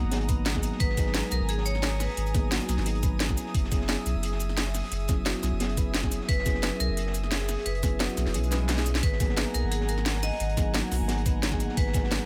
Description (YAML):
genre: liquid drum and bass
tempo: 175 BPM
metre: 4/4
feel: straight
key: G# minor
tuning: A4 = 440 Hz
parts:
  - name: mellow FM electric piano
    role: accompaniment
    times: 0.0-12.3 s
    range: F#3 to B4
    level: -36 LUFS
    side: equal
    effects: chorus, dub echo
  - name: airy breathy pad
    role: sustained chords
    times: 0.0-12.3 s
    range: G#4 to D#6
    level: -41 LUFS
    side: equal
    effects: chorus, sidechain pumping
  - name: saturated sub bass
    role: bass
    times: 0.0-12.2 s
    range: F#1 to B1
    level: -32 LUFS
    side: equal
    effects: none
  - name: crunchy breakbeat drum kit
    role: drums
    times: 0.1-12.2 s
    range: hi-hat, snare drum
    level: -40 LUFS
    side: equal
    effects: high-pass filter on hats, high-pass filter on snare, high-pass filter on room
  - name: drum and bass drum kit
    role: drums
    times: 0.1-12.2 s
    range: cabasa, hi-hat, snare drum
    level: -34 LUFS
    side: equal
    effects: none
  - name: electronic kick drum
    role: drums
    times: 0.3-12.0 s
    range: none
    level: -29 LUFS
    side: equal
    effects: none
  - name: vibraphone with hard mallets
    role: melody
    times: 0.8-2.5, 6.3-12.3 s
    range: G#4 to D#5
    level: -37 LUFS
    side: equal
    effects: tape echo
  - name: swell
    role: sound effects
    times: 8.5-9.0 s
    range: none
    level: -43 LUFS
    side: equal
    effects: none
room: little or no reverb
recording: none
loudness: -27 LUFS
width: mono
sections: 0.0-12.3 A section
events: kick drops out 8.3-9.0; swell 8.5-9.0; drum fill 8.5-9.0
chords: 0.0 G#m9; 3.4 F#9sus4; 9.0 G#m9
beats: 0.12 0.46 | 0.80 1.14 1.49 1.83 | 2.17 2.52 2.86 3.20 | 3.54 3.89 4.23 4.57 | 4.92 5.26 5.60 5.94 | 6.29 6.63 6.97 7.32 | 7.66 8.00 8.34 8.69 | 9.03 9.37 9.71 10.06 | 10.40 10.74 11.09 11.43 | 11.77 12.12